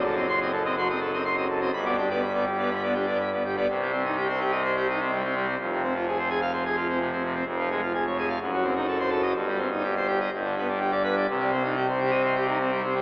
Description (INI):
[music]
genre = classical, organ toccata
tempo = 126 BPM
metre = 4/4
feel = straight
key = C minor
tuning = A4 = 437 Hz
[part]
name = pipe organ, full organ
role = solo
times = 0.0-13.0 s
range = F1 to C6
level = -23 LUFS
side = equal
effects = none
[sound]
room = wet church reverb, RT60 3.1 s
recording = worn, warbling old tape, cassette tape, warbly pitch drift, AM radio sound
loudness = -23 LUFS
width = side -25 dB against mid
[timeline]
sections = 0.0-3.7 A section; 3.7-13.0 B section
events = none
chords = 0.0 F#dim7; 1.7 G; 3.7 Cm; 5.6 Fm; 7.5 Db/F; 8.4 F#dim7; 9.4 Cm/G; 10.3 G; 11.3 Cm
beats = 0.28 0.76 1.24 | 1.73 2.22 2.71 3.20 | 3.69 4.17 4.64 5.12 | 5.59 6.06 6.53 7.00 | 7.46 7.93 8.41 8.88 | 9.36 9.84 10.32 10.81 | 11.29 11.76 12.24 12.71